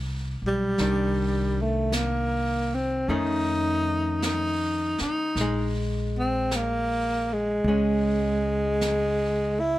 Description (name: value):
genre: jazz ballad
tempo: 52 BPM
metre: 4/4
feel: swing 68% on 8ths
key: F minor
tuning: A4 = 440 Hz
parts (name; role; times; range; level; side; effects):
- breathy tenor saxophone; melody; 0.0-9.8 s; G3 to E4; -25 LUFS; equal; none
- archtop guitar, miked and amplified; accompaniment; 0.0-9.8 s; Eb3 to G4; -32 LUFS; left 2 dB; none
- upright bass; bass; 0.0-9.8 s; Bb1 to F2; -29 LUFS; equal; none
- jazz brush drum kit; drums; 0.8-9.8 s; brushed snare drum, hi-hat, snare drum; -36 LUFS; right 1 dB; none
room: light reverb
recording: none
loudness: -23 LUFS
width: side -15 dB against mid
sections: 0.0-9.8 A section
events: none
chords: 0.0 F7sus2; 0.8 Cmadd9; 3.1 Faug7; 5.4 Bbm7